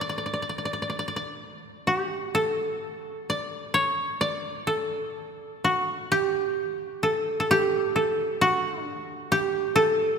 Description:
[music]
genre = japanese traditional, Japanese chamber music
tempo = 59-68 BPM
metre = 4/4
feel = rubato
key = unclear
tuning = A4 = 439 Hz
[part]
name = koto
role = solo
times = 0.0-10.2 s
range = F#4 to D5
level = -24 LUFS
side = equal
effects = none
[sound]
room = wet church reverb, RT60 3.1 s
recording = minimal, uncompressed stereo recording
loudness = -24 LUFS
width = side -6 dB against mid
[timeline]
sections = 0.0-1.9 A section; 1.9-10.2 B section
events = none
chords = none

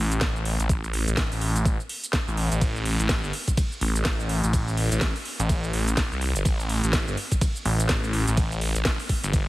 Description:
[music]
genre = bass house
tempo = 125 BPM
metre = 4/4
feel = swing 59% on 16ths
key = A minor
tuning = A4 = 440 Hz
[part]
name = phased detuned saw bass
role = bass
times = 0.0-9.5 s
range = G1 to C2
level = -24 LUFS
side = equal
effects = phaser, tube saturation, sidechain pumping
[part]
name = garage drum kit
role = drums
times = 0.1-9.4 s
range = hi-hat, ride cymbal, shaker, snare drum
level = -29 LUFS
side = equal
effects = studio ambience
[part]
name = electronic kick drum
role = drums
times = 0.2-9.4 s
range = none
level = -24 LUFS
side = equal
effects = studio ambience
[sound]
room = little or no reverb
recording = heavily compressed radio sound, multiband compression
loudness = -22 LUFS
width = side -18 dB against mid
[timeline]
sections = 0.0-9.5 A section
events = none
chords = none

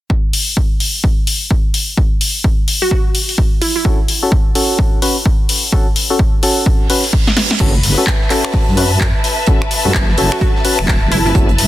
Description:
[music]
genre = bass house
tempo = 128 BPM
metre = 4/4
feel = swing 61% on 16ths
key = F# minor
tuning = A4 = 440 Hz
[part]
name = electronic kick drum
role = drums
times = 0.1-11.5 s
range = none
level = -14 LUFS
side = equal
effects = none
[part]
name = house drum kit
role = drums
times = 0.3-11.7 s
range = crash cymbal, finger snaps, handclaps, hi-hat, snare drum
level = -18 LUFS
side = left 2 dB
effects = soft clipping on snare
[part]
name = glassy wavetable pluck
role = melody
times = 2.8-3.8, 10.3-11.3 s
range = E4 to F#4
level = -21 LUFS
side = right 3 dB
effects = chorus, tape echo
[part]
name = percussive organ stab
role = stabs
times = 3.9-11.5 s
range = C#4 to B4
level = -19 LUFS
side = left 1 dB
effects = chorus, sidechain pumping, tape echo
[part]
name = reverse cymbal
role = sound effects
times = 6.8-7.6 s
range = none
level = -22 LUFS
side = right 6 dB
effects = none
[part]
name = wobble bass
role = bass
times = 7.6-11.7 s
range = E1 to F#2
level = -16 LUFS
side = equal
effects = chorus, tube saturation, sidechain pumping
[part]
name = deep reggae drum kit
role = drums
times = 7.6-11.7 s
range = hi-hat, snare drum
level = -29 LUFS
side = right 5 dB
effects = high-pass filter on hats, high-pass filter on snare, high-pass filter on room
[part]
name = warm studio string section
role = texture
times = 7.6-11.7 s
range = B4 to A5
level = -21 LUFS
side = left 2 dB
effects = sidechain pumping
[sound]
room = little or no reverb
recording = dense, heavily limited modern master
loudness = -12 LUFS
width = side -14 dB against mid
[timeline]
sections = 0.1-7.6 A section; 7.6-11.7 B section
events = reverse cymbal 6.8-7.6; drum fill 7.2-7.6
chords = 0.1 F#m

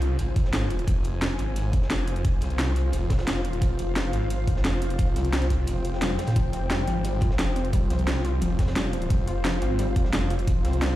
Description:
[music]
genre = dark technical drum and bass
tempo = 175 BPM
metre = 4/4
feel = straight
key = F minor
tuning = A4 = 440 Hz
[part]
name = snarling distorted saw bass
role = bass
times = 0.0-11.0 s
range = F1 to C2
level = -26 LUFS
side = equal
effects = distortion, tube saturation, sidechain pumping
[part]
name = crunchy breakbeat drum kit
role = drums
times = 0.0-11.0 s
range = hi-hat, snare drum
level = -41 LUFS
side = right 1 dB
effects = none
[part]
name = drum and bass drum kit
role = drums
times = 0.0-10.9 s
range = hi-hat, snare drum, toms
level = -29 LUFS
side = equal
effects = overdrive
[part]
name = granular cloud pad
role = texture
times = 0.0-11.0 s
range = F4 to Bb5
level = -32 LUFS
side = left 1 dB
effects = built-in reverb, sidechain pumping
[part]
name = electronic kick drum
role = drums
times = 0.4-10.5 s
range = none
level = -23 LUFS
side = equal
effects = overdrive
[part]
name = wide unison pluck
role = arpeggios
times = 6.4-10.9 s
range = F3 to F4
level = -32 LUFS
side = left 2 dB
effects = sidechain pumping, tape echo
[sound]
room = light reverb, digital ambience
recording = played on a big sound system in a bare room, stone room reverb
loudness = -22 LUFS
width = side -15 dB against mid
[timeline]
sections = 0.0-11.0 A section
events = break 5.7-6.4; drum fill 6.0-6.4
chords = 0.0 F5

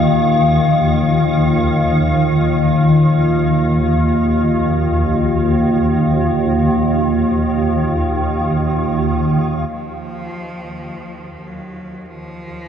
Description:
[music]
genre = dark ambient drone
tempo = free time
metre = none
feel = none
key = unclear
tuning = A4 = 437 Hz
[part]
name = deep dark ambient pad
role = sustained chords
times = 0.0-12.7 s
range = Bb3 to F5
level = -18 LUFS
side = equal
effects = chorus, built-in reverb
[part]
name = swarming drone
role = drone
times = 0.0-12.7 s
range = Eb2 to Eb3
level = -16 LUFS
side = equal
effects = built-in reverb
[part]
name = quartz singing bowl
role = texture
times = 0.0-9.7 s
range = none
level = barely audible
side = none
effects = none
[part]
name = rich cello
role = melody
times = 9.7-12.7 s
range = F3 to Gb3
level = -31 LUFS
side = equal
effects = diffuse ambient delay
[sound]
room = wet huge ambient reverb, RT60 9.3 s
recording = none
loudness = -13 LUFS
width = side -8 dB against mid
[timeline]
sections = 0.0-9.7 A section; 9.7-12.7 B section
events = none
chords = 0.0 Ebsus2

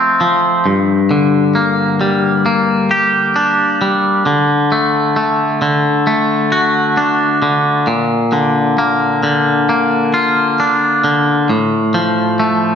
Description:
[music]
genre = rock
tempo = 66 BPM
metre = 4/4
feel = straight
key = G minor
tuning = A4 = 439 Hz
[part]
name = twangy electric guitar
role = solo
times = 0.0-12.8 s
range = G2 to G4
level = -11 LUFS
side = left 1 dB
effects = analog delay
[sound]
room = wet recital hall reverb, RT60 1.6 s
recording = big arena sound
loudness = -11 LUFS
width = side -7 dB against mid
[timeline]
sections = 0.7-12.8 A section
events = none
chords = 0.0 F; 0.7 Gm; 4.3 D; 7.9 Bb; 11.5 F/A

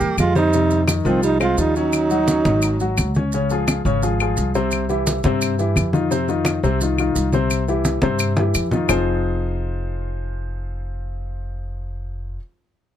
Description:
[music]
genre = Afro-Cuban jazz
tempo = 172 BPM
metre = 4/4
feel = straight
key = F minor from 3.3 s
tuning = A4 = 442 Hz
[part]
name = clear trombone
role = melody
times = 0.0-2.9 s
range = C4 to G4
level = -19 LUFS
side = right 2 dB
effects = none
[part]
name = clear tenor saxophone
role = second line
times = 0.0-2.9 s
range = Eb3 to Bb3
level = -24 LUFS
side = right 6 dB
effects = none
[part]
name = warm baby grand piano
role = accompaniment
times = 0.0-12.4 s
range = C3 to Db5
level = -22 LUFS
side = left 3 dB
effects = none
[part]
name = upright bass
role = bass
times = 0.0-12.4 s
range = F1 to G2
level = -23 LUFS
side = equal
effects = none
[part]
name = congas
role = percussion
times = 0.0-9.0 s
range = none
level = -24 LUFS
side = equal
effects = none
[part]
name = maracas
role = percussion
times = 0.0-9.0 s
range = none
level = -30 LUFS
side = right 5 dB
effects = none
[part]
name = claves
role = percussion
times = 0.2-9.0 s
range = none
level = -24 LUFS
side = left 8 dB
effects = none
[sound]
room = little or no reverb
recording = none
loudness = -17 LUFS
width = side -10 dB against mid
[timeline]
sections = 0.0-3.3 A section; 3.3-8.9 B section; 8.9-11.7 C section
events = drum fill 8.4-8.9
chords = 0.0 C7; 0.5 Fsus2; 1.9 Ab5; 3.3 Dbmaj7; 4.7 C; 6.1 F5; 7.5 C; 8.9 Fm7

